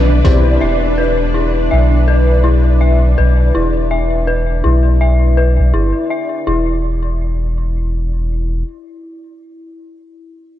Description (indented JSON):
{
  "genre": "trip hop",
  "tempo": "82 BPM",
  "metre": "4/4",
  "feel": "swing 59% on 16ths",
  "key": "E minor",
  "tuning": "A4 = 439 Hz",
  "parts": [
    { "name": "string machine, cellos", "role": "sustained chords", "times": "0.0-6.5 s", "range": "D4 to B4", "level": "-22 LUFS", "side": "equal", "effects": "ensemble chorus" },
    { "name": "dark detuned synth bell", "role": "arpeggios", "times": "0.0-10.6 s", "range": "E4 to E5", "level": "-19 LUFS", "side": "left 3 dB", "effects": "chorus, vintage 12-bit sampler grit, low-pass filter, ping-pong delay" },
    { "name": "soft dub sub bass", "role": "bass", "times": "0.0-8.6 s", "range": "E1 to B1", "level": "-13 LUFS", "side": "equal", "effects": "none" },
    { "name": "flickering grainy texture", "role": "texture", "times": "0.0-6.5 s", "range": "D5", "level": "-27 LUFS", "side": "right 1 dB", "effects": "built-in reverb" },
    { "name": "felt-muted upright piano", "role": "accompaniment", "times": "0.2-1.0 s", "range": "C4 to D5", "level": "-22 LUFS", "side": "left 3 dB", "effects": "tremolo, tape echo" },
    { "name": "trip hop sampler-style drum kit", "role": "drums", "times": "0.2-0.5 s", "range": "hi-hat, kick drum", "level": "-15 LUFS", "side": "equal", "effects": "overdrive, vintage 12-bit sampler grit" }
  ],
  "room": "digital ambience",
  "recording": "dark, warm production",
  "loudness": "-12 LUFS",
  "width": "side -12 dB against mid",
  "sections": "0.0-6.5 A section; 6.5-9.4 B section",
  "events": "none",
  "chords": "0.0 Em7; 6.5 N.C."
}